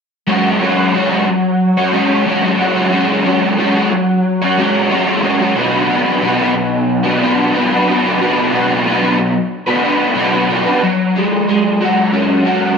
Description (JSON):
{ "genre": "rock", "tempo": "91 BPM", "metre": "4/4", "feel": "straight", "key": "unclear", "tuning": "A4 = 441 Hz", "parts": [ { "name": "crunchy overdriven guitar", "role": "solo", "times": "0.3-12.8 s", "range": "B2 to C#5", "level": "-12 LUFS", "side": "equal", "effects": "ensemble chorus, slapback echo" } ], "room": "moderate plate reverb, RT60 2.8 s", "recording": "none", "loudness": "-12 LUFS", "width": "side -6 dB against mid", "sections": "0.3-10.8 A section; 10.8-12.8 B section", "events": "none", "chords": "0.3 F#sus2; 5.6 Bm; 10.8 F#sus2", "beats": "| 0.29 0.96 1.62 2.28 | 2.94 3.60 4.26 4.92 | 5.58 6.23 6.89 7.55 | 8.20 8.86 9.52 10.17 | 10.83 11.48 12.13" }